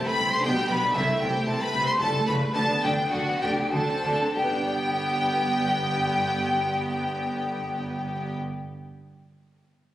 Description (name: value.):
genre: classical, baroque-style concerto movement with solo episodes.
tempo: 94-118 BPM.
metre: 3/4.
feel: straight.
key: G major.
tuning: A4 = 438 Hz.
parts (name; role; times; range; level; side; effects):
hollow concert flute; melody; 0.0-8.4 s; E5 to C6; -28 LUFS; left 1 dB; none.
rich studio violin section; melody; 0.0-8.4 s; E5 to C6; -30 LUFS; left 2 dB; none.
lute; accompaniment; 0.0-8.7 s; B2 to D5; -33 LUFS; equal; none.
rich chamber viola section; accompaniment; 0.0-8.4 s; G3 to D4; -32 LUFS; right 2 dB; none.
rich chamber violin section; second line; 0.1-8.4 s; E4 to C5; -32 LUFS; left 1 dB; none.
rich chamber double bass section; bass; 0.2-8.4 s; G1 to D2; -33 LUFS; right 1 dB; none.
warm chamber cello section; bass; 0.2-8.4 s; G2 to D3; -34 LUFS; right 1 dB; none.
room: wet recital hall reverb, RT60 1.7 s.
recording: recorded on a phone in the room, club reverb.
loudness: -23 LUFS.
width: side -13 dB against mid.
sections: 0.0-4.4 A section; 4.4-8.2 B section.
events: slowing down 0.2-4.4.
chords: 0.4 G/B; 1.0 Am/C; 2.0 A7/C#; 2.6 G/D; 3.7 D7; 4.4 G.